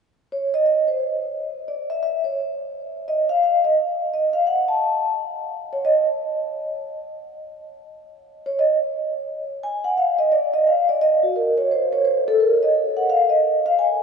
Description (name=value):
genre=jazz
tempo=174 BPM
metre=4/4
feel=swing 65% on 8ths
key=unclear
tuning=A4 = 439 Hz
part: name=vibraphone with medium mallets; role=solo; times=0.3-6.0, 8.5-14.0 s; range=Gb4 to A5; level=-18 LUFS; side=equal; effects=none
room=wet cathedral reverb, RT60 4.6 s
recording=recorded in a church or concert hall, nothing above 10.7 kHz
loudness=-18 LUFS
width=side -6 dB against mid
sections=0.0-5.5 A section; 5.5-14.0 B section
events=none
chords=none